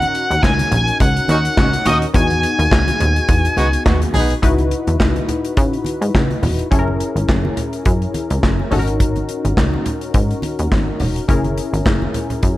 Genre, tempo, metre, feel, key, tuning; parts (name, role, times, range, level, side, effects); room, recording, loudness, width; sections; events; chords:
early-eighties boogie funk; 105 BPM; 4/4; swing 56% on 16ths; C# dorian; A4 = 440 Hz
octave-fuzz lead guitar; melody; 0.0-3.8 s; D#5 to G#5; -18 LUFS; equal; distortion, slapback echo
funky polysynth comp; accompaniment; 0.0-12.6 s; B3 to B4; -22 LUFS; left 3 dB; chorus
plucky analog bass; bass; 0.0-12.6 s; E1 to C#3; -18 LUFS; equal
modern studio drum kit; drums; 0.0-12.6 s; handclaps, hi-hat, kick drum, snare drum; -18 LUFS; equal; gated reverb
congas; percussion; 0.0-12.6 s; -27 LUFS; right 1 dB
warm horn section; second line; 1.3-4.3 s; B3 to G#4; -22 LUFS; right 1 dB
studio reverb; -14 LUFS; side -16 dB against mid
0.0-4.4 A section; 4.4-12.6 B section
0.0 D#m7; 2.1 Emaj9; 4.4 C#m11; 6.7 F#9; 8.7 G#9sus4; 11.3 F#9